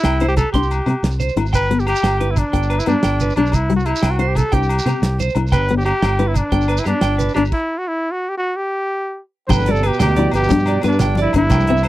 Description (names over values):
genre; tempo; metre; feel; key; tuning
highlife guitar band; 120 BPM (dotted quarters); 12/8; straight; G major; A4 = 438 Hz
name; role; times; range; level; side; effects
warm trumpet; melody; 0.0-11.9 s; D4 to C5; -20 LUFS; equal; none
clean electric guitar; arpeggios; 0.0-11.9 s; G4 to C6; -24 LUFS; right 6 dB; warbly pitch drift
fingered electric bass; bass; 0.0-11.9 s; G1 to C3; -19 LUFS; equal; none
damped 70s drum kit; drums; 0.0-11.9 s; crash cymbal, hi-hat, kick drum, snare drum; -21 LUFS; equal; none
agogo bells; percussion; 0.0-11.9 s; none; -29 LUFS; left 6 dB; none
fingerpicked steel-string acoustic guitar; accompaniment; 0.2-11.9 s; G3 to E4; -21 LUFS; left 5 dB; none
shekere; percussion; 0.4-11.8 s; none; -26 LUFS; right 4 dB; none
mellow trombone; second line; 9.5-11.9 s; G2 to E3; -25 LUFS; right 5 dB; none
congas; percussion; 9.5-11.6 s; none; -24 LUFS; left 1 dB; none
room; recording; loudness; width
little or no reverb; dry, close 1970s-style studio recording; -15 LUFS; side -15 dB against mid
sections
0.0-9.5 A section; 9.5-11.9 B section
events
stop 7.5-9.5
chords
0.0 C; 1.5 G; 3.5 C; 5.5 G; 7.5 N.C.; 9.5 G